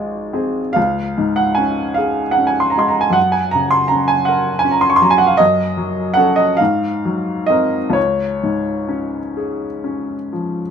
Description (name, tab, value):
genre	classical, romantic nocturne for solo piano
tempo	41-54 BPM (dotted quarters)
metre	6/8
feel	rubato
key	Db major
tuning	A4 = 440 Hz
part	clear upright piano	solo	0.0-10.7 s	Ab1 to Db6	-14 LUFS	right 1 dB	none
room	light reverb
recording	minimal, uncompressed stereo recording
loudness	-14 LUFS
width	side -7 dB against mid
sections	0.0-10.7 A section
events	none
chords	0.0 Ab; 0.8 Db5; 3.2 Gb; 5.4 Ebm7b5/Gb; 6.6 Ab9; 8.0 Db